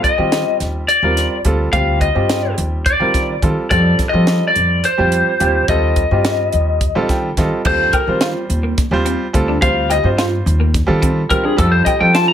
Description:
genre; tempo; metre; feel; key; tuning
electric jazz fusion; 213 BPM (eighths); 7/8; straight; Eb lydian; A4 = 439 Hz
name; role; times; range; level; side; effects
lightly driven lead guitar; melody; 0.0-12.3 s; Ab4 to Bb5; -16 LUFS; left 2 dB; none
bright grand piano; accompaniment; 0.0-12.3 s; G3 to G5; -20 LUFS; right 2 dB; none
upright bass; bass; 0.0-12.2 s; D2 to F3; -18 LUFS; equal; none
crisp fusion drum kit; drums; 0.0-12.3 s; crash cymbal, hi-hat, kick drum, snare drum; -20 LUFS; equal; none
clean electric guitar; stabs; 7.9-12.3 s; Bb3 to G4; -23 LUFS; equal; ensemble chorus
room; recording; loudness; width
moderate club reverb, RT60 0.7 s; none; -13 LUFS; side -9 dB against mid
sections
0.0-7.7 A section; 7.7-12.3 B section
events
grand piano fill 6.8-7.7; lead electric guitar solo 7.7-12.3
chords
0.0 Ebmaj9; 3.7 F7; 7.7 Ebmaj9; 11.6 F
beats
0.03 0.31 0.60 0.88 1.16 1.45 | 1.73 2.01 2.29 2.58 2.86 3.14 3.42 | 3.71 3.99 4.27 4.55 4.84 5.12 5.40 | 5.68 5.97 6.25 6.53 6.81 7.09 7.37 | 7.66 7.94 8.22 8.50 8.78 9.06 9.34 | 9.62 9.90 10.19 10.46 10.75 11.03 11.31 | 11.59 11.87 12.15

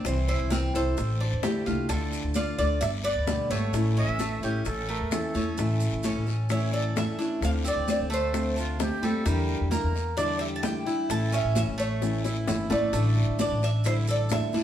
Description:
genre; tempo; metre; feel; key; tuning
latin, Cuban son and guajira; 130 BPM; 4/4; straight; unclear; A4 = 440 Hz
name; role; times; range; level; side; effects
nylon-string guitar; accompaniment; 0.0-14.6 s; B2 to G4; -31 LUFS; left 2 dB; none
Cuban tres; arpeggios; 0.0-14.6 s; G3 to D5; -35 LUFS; right 2 dB; none
upright bass; bass; 0.0-14.4 s; G1 to E2; -28 LUFS; equal; none
bongos; percussion; 0.0-14.6 s; none; -36 LUFS; left 5 dB; none
Cuban tres; melody; 0.1-14.6 s; G4 to A5; -30 LUFS; right 1 dB; none
congas; percussion; 0.1-14.6 s; none; -34 LUFS; right 2 dB; none
guiro; percussion; 0.1-14.6 s; none; -42 LUFS; left 4 dB; none
maracas; percussion; 0.1-14.6 s; none; -44 LUFS; right 4 dB; none
breathy bright jazz flute; second line; 4.0-5.6, 8.6-9.6 s; F4 to E5; -34 LUFS; right 2 dB; none
room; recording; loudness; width
wet stone room reverb, RT60 1.2 s; band playing live in one room; -24 LUFS; side -10 dB against mid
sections
0.0-5.6 A section; 5.6-14.6 B section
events
drum fill 12.0-12.9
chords
0.1 C; 1.0 Asus4; 1.9 Dm; 2.8 G; 3.7 A; 7.4 Dm7; 9.3 Em7b5; 11.1 A; 12.9 A7sus4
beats
| 0.05 0.52 0.98 1.44 | 1.90 2.36 2.82 3.28 | 3.74 4.20 4.66 5.12 | 5.58 6.04 6.50 6.96 | 7.42 7.88 8.34 8.80 | 9.26 9.72 10.18 10.64 | 11.10 11.56 12.02 12.47 | 12.93 13.39 13.85 14.31

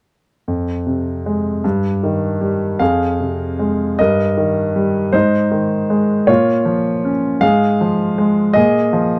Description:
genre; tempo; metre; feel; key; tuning
classical, lyrical solo piano; 52 BPM (dotted quarters); 6/8; rubato; F minor; A4 = 440 Hz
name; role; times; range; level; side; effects
warm grand piano; solo; 0.5-9.2 s; F2 to F5; -16 LUFS; equal; none
room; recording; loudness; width
light reverb; close, detailed microphones; -17 LUFS; mono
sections
0.5-2.8 A section; 2.8-9.2 B section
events
none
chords
0.5 Fm; 1.6 Eb/G; 2.8 Fm; 4.0 Eb/G; 5.1 Ab; 6.3 Bbm; 7.4 Fm/Ab; 8.6 Bb5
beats
| 0.48 1.64 | 2.81 3.99 | 5.14 6.29 | 7.43 8.57

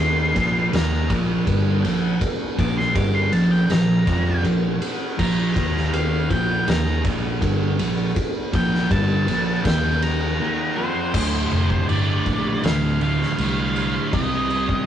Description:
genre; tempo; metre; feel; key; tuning
stoner and doom metal; 81 BPM; 4/4; straight; unclear; A4 = 440 Hz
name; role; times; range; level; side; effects
octave-fuzz lead guitar; melody; 0.0-14.9 s; C5 to D6; -26 LUFS; equal; distortion
thick fuzz guitar; riff; 0.0-14.9 s; D2 to F4; -28 LUFS; left 5 dB; distortion
thick fuzz guitar; riff; 0.0-14.9 s; D2 to F4; -24 LUFS; right 3 dB; distortion
vintage muted picked electric bass; bass; 0.0-14.7 s; D1 to F2; -24 LUFS; equal; overdrive
oversized low-tuned drum kit; drums; 0.4-14.9 s; crash cymbal, kick drum, ride cymbal, snare drum; -24 LUFS; equal; vintage 12-bit sampler grit
room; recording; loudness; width
moderate stone room reverb, RT60 1.1 s; rough rehearsal-room recording, warm saturation, cassette tape; -18 LUFS; side -10 dB against mid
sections
0.0-11.1 A section; 11.1-14.9 B section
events
lead electric guitar solo 0.0-11.1; break 10.4-11.1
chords
0.4 Bb5; 5.6 Eb5; 6.3 Bb5; 9.7 Eb5; 10.4 Bb5; 11.1 Dm; 14.1 Cm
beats
0.73 1.47 | 2.21 2.96 3.70 4.44 | 5.19 5.93 6.67 7.42 | 8.16 8.91 9.65 10.40 | 11.14 11.89 12.63 13.38 | 14.13

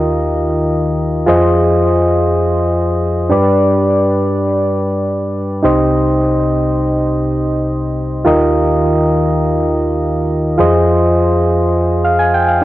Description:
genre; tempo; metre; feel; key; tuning
pop; free time; none; none; unclear; A4 = 439 Hz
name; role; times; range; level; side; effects
soft electric-piano-like synth keys; solo; 0.0-12.6 s; C2 to Ab5; -12 LUFS; equal; chorus
room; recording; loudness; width
moderate studio reverb, RT60 0.5 s; home recording on cassette; -12 LUFS; side -15 dB against mid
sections
0.0-12.6 A section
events
none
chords
0.0 Ebadd9; 1.3 Fm7; 3.3 G; 5.6 Cm; 8.3 Ebadd9; 10.6 Fm7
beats
free time

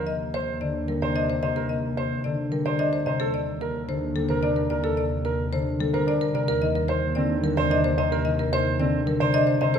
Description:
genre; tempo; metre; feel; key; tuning
classical, minimalist pattern music; 110 BPM; 3/4; straight; Eb lydian; A4 = 444 Hz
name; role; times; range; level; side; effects
marimba with hard mallets; melody; 0.0-9.8 s; A4 to Eb5; -28 LUFS; left 6 dB; none
bright concert grand piano; arpeggios; 0.0-9.8 s; C4 to C5; -28 LUFS; right 6 dB; none
warm symphonic double bass section; bass; 0.0-9.8 s; Eb2; -30 LUFS; right 1 dB; none
concert harp; accompaniment; 0.6-9.8 s; C3 to G3; -27 LUFS; left 1 dB; none
room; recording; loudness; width
wet recital hall reverb, RT60 1.4 s; recorded in a church or concert hall; -22 LUFS; side -7 dB against mid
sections
0.0-9.8 A section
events
none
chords
0.0 Eb6; 3.2 Bbmaj9/Eb; 6.5 Eb6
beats
0.48 1.02 | 1.57 2.11 2.66 | 3.21 3.75 4.30 | 4.84 5.39 5.93 | 6.48 7.02 7.57 | 8.11 8.66 9.21 | 9.75

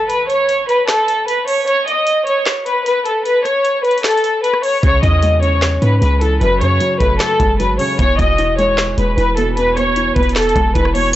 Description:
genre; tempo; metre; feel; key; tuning
hip hop, trap; 152 BPM; 4/4; half-time; E major; A4 = 438 Hz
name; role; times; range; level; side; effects
warm studio violin section; melody; 0.0-11.1 s; A4 to D#5; -14 LUFS; equal; low-pass filter, tape echo
trap drum kit; drums; 0.1-11.0 s; handclaps, hi-hat, kick drum, rim click, snare drum; -20 LUFS; equal; vintage 12-bit sampler grit
dark grand piano; accompaniment; 4.8-11.2 s; E2 to C#4; -21 LUFS; equal; low-pass filter
clean 808-style bass; bass; 4.8-11.1 s; E1 to G#2; -17 LUFS; equal; none
room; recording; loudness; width
digital ambience; dry, gritty hardware recording, transformer saturation, nothing above 8.0 kHz; -12 LUFS; side -13 dB against mid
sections
0.0-11.1 A section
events
break 0.0-4.8; kick muted 3.3-4.8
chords
0.0 N.C.; 4.8 C#m; 6.4 F#madd9; 8.0 E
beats
| 0.10 0.49 0.89 1.28 | 1.68 2.07 2.46 2.86 | 3.25 3.65 4.04 4.44 | 4.83 5.23 5.62 6.02 | 6.41 6.81 7.20 7.60 | 7.99 8.38 8.78 9.18 | 9.57 9.96 10.36 10.75 | 11.15

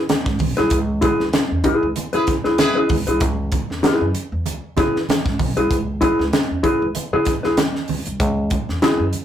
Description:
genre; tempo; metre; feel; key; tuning
funk; 96 BPM; 4/4; swing 56% on 16ths; C# minor; A4 = 444 Hz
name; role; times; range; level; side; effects
crisp fusion drum kit; drums; 0.1-9.2 s; hi-hat, kick drum, snare drum; -21 LUFS; equal; none
congas; percussion; 0.1-9.2 s; none; -29 LUFS; right 5 dB; none
upright bass; bass; 0.3-9.1 s; B1 to C#3; -24 LUFS; equal; none
mellow electric guitar; accompaniment; 0.6-9.0 s; E4 to B4; -18 LUFS; left 1 dB; none
warm horn section; second line; 2.1-2.8 s; E4 to B4; -21 LUFS; left 1 dB; none
room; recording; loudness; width
moderate studio reverb, RT60 0.5 s; rough rehearsal-room recording, warm saturation; -17 LUFS; side -10 dB against mid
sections
0.0-9.2 A section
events
band accent 0.7-3.2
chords
0.0 C#m7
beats
0.09 | 0.72 1.34 1.97 2.59 | 3.21 3.84 4.46 5.08 | 5.71 6.33 6.95 7.58 | 8.20 8.82

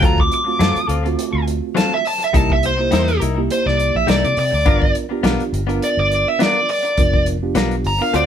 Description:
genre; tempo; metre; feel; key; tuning
straight-eighth soul blues; 104 BPM; 4/4; swing 54% on 16ths; unclear; A4 = 440 Hz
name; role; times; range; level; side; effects
dark smooth lead guitar; melody; 0.0-8.3 s; C5 to D6; -18 LUFS; equal; overdrive
mellow reed electric piano; accompaniment; 0.0-8.3 s; A3 to A#4; -24 LUFS; right 8 dB; fast tremolo
direct-recorded clean electric guitar; stabs; 0.0-8.3 s; F#3 to C5; -24 LUFS; left 6 dB; digital delay
vintage muted fingered electric bass; bass; 0.0-8.3 s; F1 to C3; -21 LUFS; left 1 dB; none
warm soul drum kit; drums; 0.0-8.3 s; hi-hat, kick drum, snare drum; -20 LUFS; left 1 dB; none
room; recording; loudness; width
light reverb; band playing live in one room; -15 LUFS; side -9 dB against mid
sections
0.0-8.3 A section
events
none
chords
0.0 D7#9; 2.3 C7#9; 4.7 G7#9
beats
| 0.02 0.60 1.18 1.76 | 2.34 2.92 3.50 4.08 | 4.66 5.24 5.82 6.40 | 6.98 7.56 8.14

